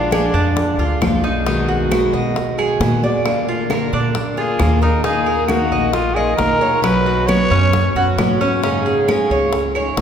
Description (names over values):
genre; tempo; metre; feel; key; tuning
latin, Cuban son and guajira; 134 BPM; 4/4; straight; unclear; A4 = 440 Hz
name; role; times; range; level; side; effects
growling trumpet; melody; 0.0-1.0, 4.4-8.2 s; D4 to C#5; -21 LUFS; left 1 dB; none
picked steel-string acoustic guitar; accompaniment; 0.0-10.0 s; B2 to Ab4; -20 LUFS; left 1 dB; none
Cuban tres; arpeggios; 0.0-10.0 s; C#4 to D#5; -21 LUFS; right 3 dB; none
upright bass; bass; 0.0-10.0 s; Bb1 to B2; -21 LUFS; equal; none
bongos; percussion; 0.1-10.0 s; none; -27 LUFS; left 4 dB; none
claves; percussion; 0.1-10.0 s; none; -33 LUFS; right 5 dB; none
congas; percussion; 0.1-10.0 s; none; -25 LUFS; left 1 dB; none
room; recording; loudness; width
wet church reverb, RT60 4.0 s; recorded in a church or concert hall; -14 LUFS; side -8 dB against mid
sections
0.0-10.0 A section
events
none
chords
0.0 Bb7; 1.5 B6; 3.3 Bb; 5.0 Ebsus2; 6.8 Bsus2; 8.6 Absus4